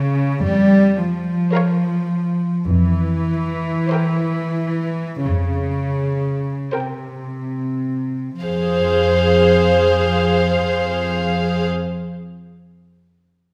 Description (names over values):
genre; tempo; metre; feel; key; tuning
classical, slow romantic movement for string orchestra; 33-56 BPM; 4/4; rubato; F minor; A4 = 441 Hz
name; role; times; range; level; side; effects
warm chamber violin section; melody; 0.0-11.7 s; F5 to G5; -28 LUFS; equal; none
warm chamber violin section; second line; 0.0-11.7 s; C5 to Db5; -22 LUFS; equal; none
dark chamber viola section; accompaniment; 0.0-11.7 s; Ab4 to Bb4; -24 LUFS; equal; none
dark chamber cello section; bass; 0.0-11.7 s; C3 to G3; -22 LUFS; equal; none
dark chamber double bass section; bass; 0.4-11.7 s; F2; -25 LUFS; equal; none
room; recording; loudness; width
wet recital hall reverb, RT60 1.6 s; none; -19 LUFS; mono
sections
0.0-8.4 A section; 8.4-13.5 B section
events
slowing down 0.0-8.4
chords
0.0 Bbm/F; 2.7 C7/F; 8.4 Fm